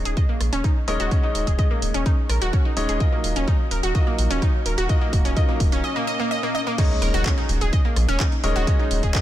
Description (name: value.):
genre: progressive house.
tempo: 127 BPM.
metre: 4/4.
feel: straight.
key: unclear.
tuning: A4 = 440 Hz.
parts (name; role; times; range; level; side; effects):
warm concert grand piano; stabs; 0.0-9.2 s; Gb3 to Eb5; -28 LUFS; left 2 dB; sidechain pumping, digital delay.
round analog bass; bass; 0.0-9.1 s; Eb1 to Bb1; -24 LUFS; equal; sidechain pumping.
wide unison pluck; arpeggios; 0.1-9.2 s; Bb3 to Eb5; -26 LUFS; right 1 dB; sidechain pumping, digital delay.
pop drum kit; drums; 0.1-9.2 s; crash cymbal, handclaps, hi-hat, rim click; -30 LUFS; right 1 dB; sidechain pumping on hats, sidechain pumping on cymbals.
electronic kick drum; drums; 0.2-9.2 s; none; -20 LUFS; equal; none.
swell and impact; sound effects; 6.1-8.7 s; none; -32 LUFS; left 1 dB; none.
room: little or no reverb.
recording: none.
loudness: -19 LUFS.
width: side -13 dB against mid.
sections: 0.0-6.8 A section; 6.8-9.2 B section.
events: build-up 0.0-6.8; drum fill 3.0-5.8; break 5.8-6.8; swell 6.1-6.8; drop 6.8-9.2; impact 6.8-8.7.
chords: 0.0 Absus4/Eb; 3.0 Ebmadd9; 6.8 Dbsus2/Eb.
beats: 0.17 0.64 | 1.11 1.59 2.06 2.53 | 3.00 3.48 3.95 4.42 | 4.89 5.37 5.84 6.31 | 6.78 7.26 7.73 8.20 | 8.67 9.15.